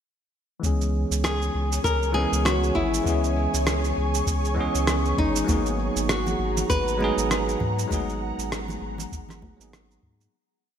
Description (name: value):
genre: sunset chillout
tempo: 99 BPM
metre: 4/4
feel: swing 57% on 16ths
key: C# dorian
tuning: A4 = 440 Hz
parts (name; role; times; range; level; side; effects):
- bell-like tine electric piano; accompaniment; 0.6-10.4 s; E3 to G#4; -29 LUFS; moving between left 4 dB and right 5 dB; auto-pan, low-pass filter, ping-pong delay
- ethereal airy pad; sustained chords; 1.0-10.3 s; G#4 to C#6; -31 LUFS; equal; ensemble chorus, built-in reverb, tremolo
- warm sub bass; bass; 0.6-10.3 s; G#1 to G#2; -27 LUFS; equal; none
- electronic cabasa and rim click; drums; 0.6-10.3 s; none; -30 LUFS; right 2 dB; overdrive
- electronic kick drum; drums; 0.6-10.2 s; none; -28 LUFS; equal; overdrive
- flamenco guitar; melody; 1.2-9.7 s; D#4 to B4; -27 LUFS; left 1 dB; ping-pong delay
- congas; percussion; 5.5-9.6 s; none; -36 LUFS; right 2 dB; none
room: moderate lush hall reverb, RT60 2.6 s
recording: bright 1980s-style digital production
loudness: -22 LUFS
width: side -8 dB against mid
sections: 0.6-10.3 groove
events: filter sweep on tine electric piano 0.6-10.3; fade-out 7.1-10.3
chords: 0.6 C#m7; 5.5 G#m9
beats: | 0.64 1.24 1.85 2.46 | 3.06 3.67 4.27 4.88 | 5.49 6.09 6.70 7.30 | 7.91 8.52 9.12 9.73